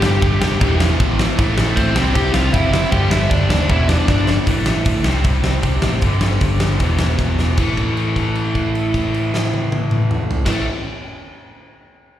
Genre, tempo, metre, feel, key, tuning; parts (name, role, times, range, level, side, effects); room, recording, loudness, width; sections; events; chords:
punk rock; 155 BPM; 4/4; straight; A minor; A4 = 440 Hz
dark smooth lead guitar; melody; 0.0-4.4 s; C4 to G5; -22 LUFS; left 1 dB; overdrive, slapback echo, digital delay
cranked stack guitar; riff; 0.0-10.7 s; E2 to C4; -22 LUFS; equal; overdrive, slapback echo
thick fuzz guitar; riff; 0.0-4.5 s; E2 to C4; -24 LUFS; right 1 dB; distortion, slapback echo
picked electric bass; bass; 0.0-10.6 s; E1 to D#2; -19 LUFS; equal
big rock drum kit; drums; 0.0-10.5 s; crash cymbal, hi-hat, kick drum, snare drum, toms; -20 LUFS; equal
small room ambience; live gig heard through the venue's PA, recital hall reverb; -15 LUFS; side -12 dB against mid
0.0-4.5 A section; 4.5-7.6 B section; 7.6-10.7 C section
drum fill 4.1-4.5, 7.2-7.6; held note 7.6-10.5
0.0 G5; 0.6 Em; 1.4 Am; 2.0 C; 2.9 G5; 3.7 E5; 4.1 G5; 4.5 A5; 5.1 C5; 6.0 G5; 6.8 E5; 7.6 A5